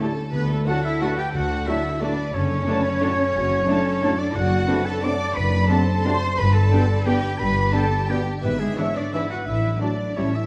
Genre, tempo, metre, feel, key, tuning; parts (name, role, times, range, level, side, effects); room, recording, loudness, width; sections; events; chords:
classical; 177 BPM; 3/4; uneven beats, rubato; D major; A4 = 438 Hz
rich studio violin section; melody; 0.0-10.5 s; G#4 to D6; -38 LUFS; equal
clear oboe; second line; 0.0-10.5 s; G#4 to D6; -32 LUFS; equal
clear studio violin section; second line; 0.0-10.5 s; F#4 to E5; -37 LUFS; equal
clear studio viola section; accompaniment; 0.0-10.3 s; E3 to G4; -32 LUFS; equal
clear trombone section; sustained chords; 0.0-10.3 s; G#2 to G#3; -36 LUFS; equal
dark French horn section; sustained chords; 0.0-10.3 s; A3 to E4; -35 LUFS; equal
concert harp; arpeggios; 0.0-10.5 s; F#2 to A4; -30 LUFS; equal
clear trumpet section; stabs; 0.0-10.3 s; E5 to A5; -38 LUFS; equal
rich studio cello section; bass; 0.0-10.5 s; G#3 to D5; -30 LUFS; equal
mellow silver concert flute; second line; 0.3-10.5 s; G#4 to D6; -31 LUFS; equal
clear studio double bass section; bass; 0.3-10.5 s; F#1 to D2; -27 LUFS; equal
moderate scoring stage reverb, RT60 2.1 s; dark, warm production, vinyl crackle; -22 LUFS; mono
0.0-10.5 A section
0.3 D; 2.3 D/F#; 4.3 D7/F#; 6.4 G; 8.4 E7/G#; 9.5 D/A